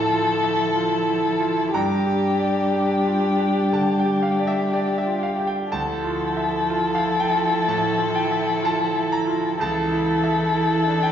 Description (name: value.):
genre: neoclassical piano and strings.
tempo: 62 BPM.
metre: 4/4.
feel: rubato.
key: D harmonic minor.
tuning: A4 = 440 Hz.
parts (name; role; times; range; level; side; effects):
dark violin; melody; 0.0-11.1 s; G4 to A4; -22 LUFS; left 3 dB; none.
dark cello; second line; 0.0-11.1 s; E3 to G3; -26 LUFS; right 2 dB; none.
bright concert grand piano; accompaniment; 0.0-11.1 s; C#2 to Bb5; -26 LUFS; right 3 dB; none.
dark viola; accompaniment; 0.0-11.1 s; D4 to E4; -27 LUFS; right 1 dB; none.
room: wet recital hall reverb, RT60 1.4 s.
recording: recorded in a church or concert hall, nothing above 7.5 kHz.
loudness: -19 LUFS.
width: side -9 dB against mid.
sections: 0.0-11.1 A section.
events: none.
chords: 0.0 Dmadd9; 1.7 Gm; 5.7 Dmadd9; 9.6 A/C#.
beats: 0.76 | 1.74 2.73 3.73 4.72 | 5.72 6.70 7.67 8.63 | 9.60 10.55.